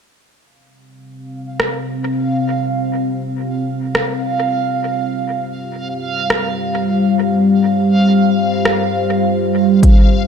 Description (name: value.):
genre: ambient dub.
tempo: free time.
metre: none.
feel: none.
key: unclear.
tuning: A4 = 440 Hz.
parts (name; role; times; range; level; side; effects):
deep dark ambient pad; sustained chords; 1.2-10.3 s; G3 to F5; -16 LUFS; left 1 dB; chorus, built-in reverb.
backwards swelling texture; texture; 1.5-10.3 s; F5; -23 LUFS; right 5 dB; built-in reverb.
organic electronic drum kit; drums; 1.6-10.0 s; hi-hat, rim click; -20 LUFS; equal; dub echo.
electronic kick drum; drums; 9.8-10.0 s; none; -9 LUFS; equal; none.
room: light reverb.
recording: dark, warm production.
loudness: -14 LUFS.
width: side -7 dB against mid.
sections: 0.4-10.3 A section.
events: none.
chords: 0.4 Csus4; 5.1 G7sus4.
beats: free time.